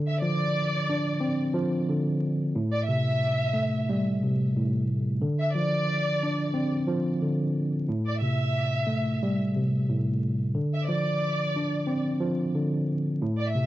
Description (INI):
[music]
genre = hip hop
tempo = 90 BPM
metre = 4/4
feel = swing 55% on 16ths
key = unclear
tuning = A4 = 440 Hz
[part]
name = mellow tine electric piano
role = accompaniment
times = 0.0-13.7 s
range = A2 to D4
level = -25 LUFS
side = equal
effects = medium stereo tremolo, high-pass filter, low-pass filter
[part]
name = warm studio violin section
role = melody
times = 0.1-13.7 s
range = D5 to E5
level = -30 LUFS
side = equal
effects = high-pass filter, low-pass filter, digital delay
[sound]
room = moderate small room reverb, RT60 0.5 s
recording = dark, warm production, vinyl crackle, nothing above 7.6 kHz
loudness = -24 LUFS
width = side -15 dB against mid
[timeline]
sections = 0.0-7.9 A section; 7.9-13.7 B section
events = none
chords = 0.0 Dm7; 2.6 Am7; 5.2 Dm7; 7.9 Am7; 10.6 Dm7